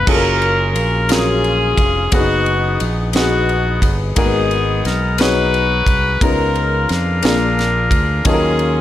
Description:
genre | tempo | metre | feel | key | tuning
slow gospel | 59 BPM (dotted quarters) | 6/8 | straight | F# major | A4 = 440 Hz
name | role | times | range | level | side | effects
bright saxophone section | melody | 0.0-8.8 s | B3 to B4 | -18 LUFS | left 2 dB | none
warm upright piano | accompaniment | 0.0-8.8 s | G#2 to C#5 | -19 LUFS | left 2 dB | none
fingered electric bass | bass | 0.0-8.8 s | E#1 to E#2 | -19 LUFS | right 1 dB | none
crisp fusion drum kit | drums | 0.1-8.7 s | crash cymbal, kick drum, ride cymbal, snare drum | -20 LUFS | right 1 dB | none
room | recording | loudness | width
light reverb, studio reverb | none | -13 LUFS | side -12 dB against mid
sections
0.1-8.8 A section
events
none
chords
0.1 F#maj9; 2.1 B6/F#; 4.2 G#m9; 6.2 C#13; 7.2 A#7; 8.2 D#m9

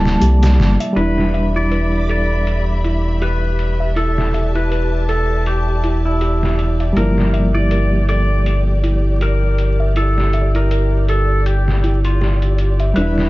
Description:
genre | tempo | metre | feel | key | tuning
trip hop | 80 BPM | 4/4 | swing 56% on 16ths | E phrygian | A4 = 438 Hz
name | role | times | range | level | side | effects
reed electric piano | accompaniment | 0.0-13.3 s | F3 to A5 | -21 LUFS | equal | fast tremolo, tape echo
music box | arpeggios | 0.0-13.3 s | E4 to E5 | -25 LUFS | right 2 dB | low-pass filter, dub echo
round analog bass | bass | 0.0-13.3 s | D1 to C2 | -16 LUFS | equal | none
backwards swelling texture | texture | 0.0-1.0 s | D5 | -35 LUFS | right 4 dB | built-in reverb
trip hop sampler-style drum kit | drums | 0.1-13.3 s | hi-hat, snare drum | -26 LUFS | equal | low-pass filter on hats, low-pass filter on kick, low-pass filter on snare, low-pass filter on room
clean lap steel guitar | melody | 1.0-13.3 s | E4 to D5 | -23 LUFS | left 1 dB | none
warm studio string section | sustained chords | 1.0-13.3 s | G4 to B5 | -27 LUFS | left 1 dB | none
room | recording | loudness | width
little or no reverb | dark, warm production, vinyl crackle, nothing above 7.7 kHz | -14 LUFS | side -19 dB against mid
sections
1.0-13.3 A section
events
filter sweep on music box 1.0-13.3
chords
0.0 Gm7; 1.0 Em7; 7.0 Gm7

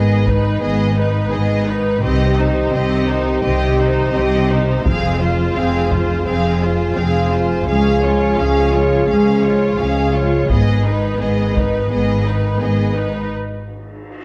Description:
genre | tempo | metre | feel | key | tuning
cinematic, epic orchestral film score | 85 BPM | 4/4 | straight | unclear | A4 = 436 Hz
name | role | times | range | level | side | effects
rich studio violin section | melody | 0.0-13.3 s | Cb5 to F5 | -27 LUFS | equal | none
warm symphonic violin section | second line | 0.0-13.3 s | Eb4 to Cb5 | -28 LUFS | equal | none
rich symphonic viola section | accompaniment | 0.0-13.3 s | Cb4 to F4 | -26 LUFS | equal | none
mellow French horn section | sustained chords | 0.0-13.3 s | Eb3 to Cb5 | -24 LUFS | equal | none
dark symphonic double bass section | bass | 0.0-13.2 s | F1 to Db2 | -22 LUFS | equal | none
rich symphonic cello section | bass | 0.0-13.2 s | Db2 to C3 | -22 LUFS | equal | none
taiko ensemble | drums | 0.3-0.6, 4.9-6.2, 10.5-11.9 s | none | -24 LUFS | equal | none
cymbal swell | sound effects | 13.5-14.2 s | none | -38 LUFS | equal | none
room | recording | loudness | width
moderate scoring stage reverb, RT60 1.9 s | dark, warm production | -17 LUFS | mono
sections
0.0-14.2 A section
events
build-up 0.0-14.2; break 13.3-14.2; cymbal swell 13.5-14.2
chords
0.0 Abm; 2.0 Cm; 4.9 Fm; 7.7 Db; 10.5 Abm; 13.3 N.C.

